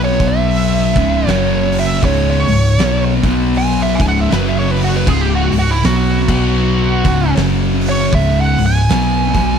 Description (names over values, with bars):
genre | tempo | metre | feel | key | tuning
stoner and doom metal | 79 BPM | 4/4 | swing 59% on 8ths | C# minor | A4 = 442 Hz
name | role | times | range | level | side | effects
fuzz lead guitar | melody | 0.0-9.6 s | E4 to G#5 | -19 LUFS | right 4 dB | wah, distortion, slapback echo
sludgy distorted guitar | riff | 0.0-9.6 s | C#2 to B3 | -23 LUFS | left 1 dB | overdrive
thick fuzz guitar | riff | 0.0-9.6 s | C#2 to B3 | -18 LUFS | left 10 dB | distortion
thick fuzz guitar | riff | 0.0-9.6 s | C#2 to B3 | -19 LUFS | right 10 dB | distortion
hollow-body short-scale fingered electric bass | bass | 0.0-9.6 s | C#1 to B1 | -19 LUFS | equal | overdrive
oversized low-tuned drum kit | drums | 0.2-9.5 s | crash cymbal, hi-hat, kick drum, snare drum | -21 LUFS | equal | none
room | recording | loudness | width
studio reverb | none | -12 LUFS | side -7 dB against mid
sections
0.0-9.6 A section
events
lead electric guitar solo 0.0-9.6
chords
0.1 B5; 0.9 C#m; 1.3 F#5; 2.0 C#5; 3.2 B5; 3.9 C#5; 4.3 F#5; 5.1 C#5; 6.2 B5; 7.0 C#5; 7.4 F#5; 8.1 C#5